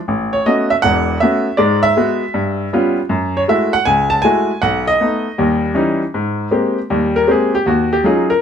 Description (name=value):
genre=solo jazz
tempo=158 BPM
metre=4/4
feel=swing 65% on 8ths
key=unclear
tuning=A4 = 440 Hz
part: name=bright upright piano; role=solo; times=0.1-8.4 s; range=E1 to A5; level=-13 LUFS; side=equal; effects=none
room=moderate studio reverb, RT60 0.6 s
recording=none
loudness=-13 LUFS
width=side -8 dB against mid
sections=0.0-6.1 A section; 6.1-8.4 B section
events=upright piano solo 6.1-8.4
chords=0.1 A69; 1.6 E9/G#; 2.3 G7#11; 3.1 F#m9; 4.6 B7; 5.4 D#7b9; 6.1 Abmaj9; 7.7 Ebm9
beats=| 0.06 0.44 0.82 1.20 | 1.58 1.96 2.34 2.72 | 3.10 3.48 3.86 4.24 | 4.62 5.00 5.38 5.76 | 6.14 6.52 6.90 7.28 | 7.66 8.04